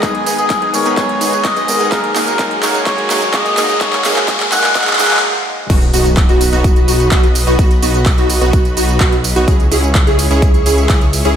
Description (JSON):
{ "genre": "EDM, festival progressive house", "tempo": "127 BPM", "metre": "4/4", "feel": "straight", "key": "B major", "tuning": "A4 = 440 Hz", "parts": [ { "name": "trumpet with cup mute", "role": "melody", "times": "0.0-5.2 s", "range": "G#4 to F#5", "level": "-17 LUFS", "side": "left 1 dB", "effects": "analog delay" }, { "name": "bright grand piano", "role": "accompaniment", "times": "0.0-5.7 s", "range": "G#2 to A#4", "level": "-21 LUFS", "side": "equal", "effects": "vintage 12-bit sampler grit, sidechain pumping, analog delay" }, { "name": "supersaw pad", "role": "sustained chords", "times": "0.0-11.4 s", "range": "F#3 to C#6", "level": "-25 LUFS", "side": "equal", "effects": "sidechain pumping" }, { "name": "supersaw stab", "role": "riff", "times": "0.0-11.3 s", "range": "A#3 to G#4", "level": "-20 LUFS", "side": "right 1 dB", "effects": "sidechain pumping, analog delay" }, { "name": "big-room dance drum kit", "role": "drums", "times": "0.0-11.3 s", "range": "crash cymbal, handclaps, hi-hat, tambourine", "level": "-18 LUFS", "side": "right 1 dB", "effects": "overdrive" }, { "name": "electronic kick drum", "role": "drums", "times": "0.0-11.0 s", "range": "none", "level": "-14 LUFS", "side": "equal", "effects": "overdrive" }, { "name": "riser and impact", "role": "sound effects", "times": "1.7-7.6 s", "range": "none", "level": "-23 LUFS", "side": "left 1 dB", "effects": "none" }, { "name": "plucky unison lead", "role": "arpeggios", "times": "5.7-11.3 s", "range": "F#4 to G#4", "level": "-18 LUFS", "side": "equal", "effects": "ensemble chorus, sidechain pumping, analog delay" }, { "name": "detuned saw bass", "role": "bass", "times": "5.7-11.3 s", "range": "B1 to C#2", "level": "-16 LUFS", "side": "equal", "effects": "sidechain pumping" } ], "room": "wet plate reverb, RT60 1.8 s", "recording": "dreamy mix soaked in reverb, high-pass filter", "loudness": "-10 LUFS", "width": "side -9 dB against mid", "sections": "0.0-5.7 A section; 5.7-11.4 B section", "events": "build-up 0.0-5.7; drum fill 0.0-5.2; filter sweep on supersaw synth 0.0-5.7; filter sweep 0.0-5.7; riser 1.7-5.2; stop 5.2-5.7; drop 5.7-11.4; impact 5.7-7.6", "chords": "0.0 G#m; 1.9 F#; 5.7 B; 9.5 C#m", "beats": "| 0.03 0.50 0.97 1.45 | 1.92 2.39 2.87 3.34 | 3.81 4.28 4.75 5.23 | 5.70 6.17 6.64 7.12 | 7.59 8.06 8.53 9.01 | 9.48 9.95 10.42 10.90" }